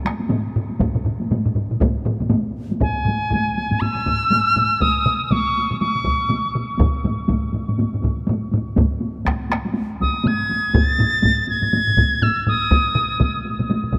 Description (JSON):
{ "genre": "japanese traditional, taiko drum ensemble", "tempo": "121 BPM", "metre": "4/4", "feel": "swing 60% on 16ths", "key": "G# miyako bushi", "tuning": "A4 = 445 Hz", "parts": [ { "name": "taiko ensemble", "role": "percussion", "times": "0.0-14.0 s", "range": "none", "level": "-26 LUFS", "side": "equal", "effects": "none" }, { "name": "taiko ensemble", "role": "percussion", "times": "0.1-12.6 s", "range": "none", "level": "-27 LUFS", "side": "equal", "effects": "none" }, { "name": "taiko ensemble", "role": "percussion", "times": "0.8-14.0 s", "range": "none", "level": "-30 LUFS", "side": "equal", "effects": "none" }, { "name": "taiko ensemble", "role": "percussion", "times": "0.8-14.0 s", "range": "none", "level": "-26 LUFS", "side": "equal", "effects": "none" }, { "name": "bright reedy piccolo", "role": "melody", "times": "2.8-6.5, 10.0-13.4 s", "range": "G#5 to A6", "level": "-22 LUFS", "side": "equal", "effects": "none" } ], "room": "wet cathedral reverb, RT60 5.3 s", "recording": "in a vast, echoing space", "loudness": "-20 LUFS", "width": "mono", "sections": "0.0-2.8 A section; 2.8-14.0 B section", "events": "speeding up 0.0-14.0", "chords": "none", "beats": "0.30 | 0.81 1.31 1.81 2.31 | 2.81 3.31 3.81 4.31 | 4.81 5.31 5.81 6.31 | 6.80 7.30 7.79 8.29 | 8.78 9.28 9.77 10.26 | 10.75 11.24 11.73 12.22 | 12.71 13.20 13.69" }